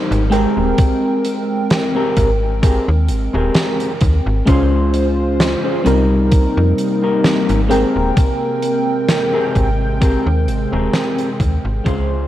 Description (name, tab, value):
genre	vaporwave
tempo	65 BPM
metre	4/4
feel	swing 54% on 16ths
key	Ab major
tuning	A4 = 440 Hz
part	FM electric piano with soft pad layer	accompaniment	0.0-12.3 s	G3 to G5	-19 LUFS	equal	lush chorus, tape echo
part	mellow electric guitar	riff	0.0-12.3 s	C4 to C5	-21 LUFS	left 1 dB	wide subtle chorus, tape echo
part	slap-like FM bass	bass	0.1-12.3 s	Eb1 to F2	-17 LUFS	equal	none
part	huge arena drum kit	drums	0.1-12.1 s	hi-hat, snare drum	-22 LUFS	right 1 dB	none
part	electronic kick drum	drums	0.8-12.1 s	none	-14 LUFS	equal	overdrive
part	lush unison pad	sustained chords	5.1-12.3 s	C3 to G5	-24 LUFS	equal	chorus
room	small room reverb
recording	cassette tape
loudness	-13 LUFS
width	side -13 dB against mid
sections	0.0-12.3 A section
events	fade-out 9.4-12.3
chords	0.3 Abmaj9; 4.5 Dbmaj7; 5.9 Cm7; 7.7 Abmaj9